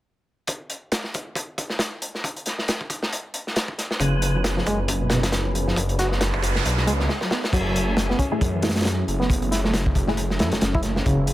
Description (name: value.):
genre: breakbeat, breaks.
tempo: 136 BPM.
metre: 4/4.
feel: swing 56% on 16ths.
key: F# minor.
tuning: A4 = 440 Hz.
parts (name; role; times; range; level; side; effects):
crunchy breakbeat drum kit; drums; 0.5-11.3 s; crash cymbal, hi-hat, kick drum, snare drum; -24 LUFS; equal; high-pass filter on kick, high-pass filter on hats, high-pass filter on cymbals, high-pass filter on snare, high-pass filter on room.
percussive tonewheel organ; sustained chords; 4.0-11.3 s; E#3 to B4; -30 LUFS; equal; overdrive, chorus vibrato, fast rotary speaker, sidechain pumping.
barky reed electric piano; riff; 4.0-11.3 s; B2 to F#4; -26 LUFS; equal; overdrive, medium tremolo, low-pass filter, dub echo.
phased detuned saw bass; bass; 4.0-11.3 s; F#1 to F#2; -24 LUFS; equal; phaser.
noise sweep; sound effects; 6.0-7.5 s; none; -30 LUFS; right 4 dB; none.
filtered dub chord stab; stabs; 8.3-10.1 s; A3 to G#4; -30 LUFS; left 2 dB; phaser, analog chorus, dub echo.
room: small room ambience.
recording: none.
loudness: -21 LUFS.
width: side -15 dB against mid.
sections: 0.5-7.5 A section; 7.5-11.3 B section.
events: noise sweep 6.0-7.5; break 7.1-7.5; drum fill 7.1-7.5; filter sweep on reed electric piano 7.5-11.3.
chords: 0.5 N.C.; 4.0 C#7/F#; 5.8 G#m7b5/F#; 7.5 F#m9.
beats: | 0.48 0.92 1.36 1.80 | 2.24 2.68 3.12 3.56 | 4.00 4.45 4.89 5.33 | 5.77 6.21 6.65 7.09 | 7.54 7.98 8.42 8.86 | 9.30 9.74 10.18 10.62 | 11.06.